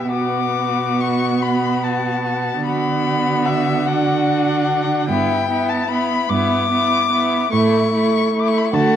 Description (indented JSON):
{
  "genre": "classical, slow romantic movement for string quartet",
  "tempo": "49 BPM (dotted quarters)",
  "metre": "6/8",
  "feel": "rubato",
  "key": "B minor",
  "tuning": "A4 = 443 Hz",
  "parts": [
    { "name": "warm violin", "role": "melody", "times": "0.0-9.0 s", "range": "E5 to D6", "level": "-21 LUFS", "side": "left 7 dB", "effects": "none" },
    { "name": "warm violin", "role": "second line", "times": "0.0-9.0 s", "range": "E4 to F#4", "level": "-22 LUFS", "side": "left 2 dB", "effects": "none" },
    { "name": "rich viola", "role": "accompaniment", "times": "0.0-9.0 s", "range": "A3 to D4", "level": "-21 LUFS", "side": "right 2 dB", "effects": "none" },
    { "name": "warm cello", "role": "bass", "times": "0.0-9.0 s", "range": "G2 to D3", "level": "-22 LUFS", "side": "right 4 dB", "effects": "none" }
  ],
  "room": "wet recital hall reverb, RT60 1.7 s",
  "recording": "worn, warbling old tape, cassette tape, warbly pitch drift",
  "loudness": "-16 LUFS",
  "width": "side -9 dB against mid",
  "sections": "0.0-9.0 A section",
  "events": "none",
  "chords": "0.1 Bm; 2.6 Bm/D; 5.1 Em7/G; 7.5 A",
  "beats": "| 0.11 1.43 | 2.65 3.88 | 5.10 6.31 | 7.53 8.74"
}